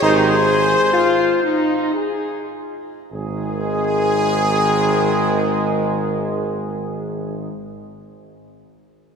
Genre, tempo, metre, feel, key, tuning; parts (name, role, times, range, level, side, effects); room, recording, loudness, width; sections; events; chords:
classical, ceremonial fanfare; 49-69 BPM; 3/4; straight; Ab major; A4 = 439 Hz
warm trumpet section; melody; 0.0-7.5 s; Ab4 to C5; -21 LUFS; equal
warm French horn section; sustained chords; 0.0-7.5 s; C4 to Ab4; -22 LUFS; left 3 dB
warm trombone section; sustained chords; 0.0-7.5 s; Eb3 to Eb4; -23 LUFS; right 3 dB
mellow tuba; bass; 0.0-7.5 s; Ab1; -24 LUFS; right 1 dB
wet church reverb, RT60 3.4 s; minimal, uncompressed stereo recording; -16 LUFS; side -6 dB against mid
0.0-3.1 A section; 3.1-6.7 B section
slowing down 0.0-3.1
0.0 Ab